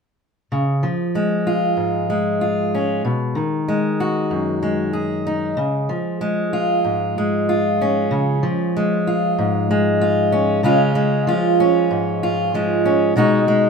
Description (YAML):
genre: folk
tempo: 95 BPM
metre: 4/4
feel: straight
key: Db mixolydian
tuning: A4 = 440 Hz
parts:
  - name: fingerpicked steel-string acoustic guitar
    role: accompaniment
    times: 0.5-13.7 s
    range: Gb2 to Ab4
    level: -16 LUFS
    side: equal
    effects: none
room: wet studio reverb, RT60 1.0 s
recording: minimal, uncompressed stereo recording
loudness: -17 LUFS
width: side -5 dB against mid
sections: 0.5-10.6 A section; 10.6-13.7 B section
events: none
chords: 0.5 Db; 3.0 Cb6; 5.6 Db; 13.2 Cb6